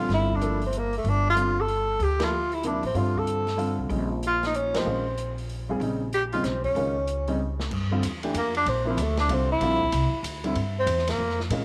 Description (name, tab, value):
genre	modal jazz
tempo	189 BPM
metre	3/4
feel	swing 63% on 8ths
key	G dorian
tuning	A4 = 439 Hz
part	breathy tenor saxophone	melody	0.0-11.4 s	F3 to A4	-28 LUFS	equal	none
part	warm concert grand piano	accompaniment	0.0-11.6 s	C3 to A4	-32 LUFS	equal	none
part	upright bass	bass	0.0-11.6 s	G1 to Bb2	-31 LUFS	equal	none
part	open jazz drum kit	drums	0.1-11.6 s	crash cymbal, hi-hat, kick drum, ride cymbal, snare drum	-40 LUFS	equal	none
room	moderate spring reverb, RT60 2.6 s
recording	none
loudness	-26 LUFS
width	mono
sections	0.0-7.7 A section; 7.7-11.6 B section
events	band accent 2.2, 4.7; drum fill 7.4-7.7; tenor saxophone solo 7.7-11.6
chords	0.1 Gm9; 3.9 Bbm9; 7.7 Gm7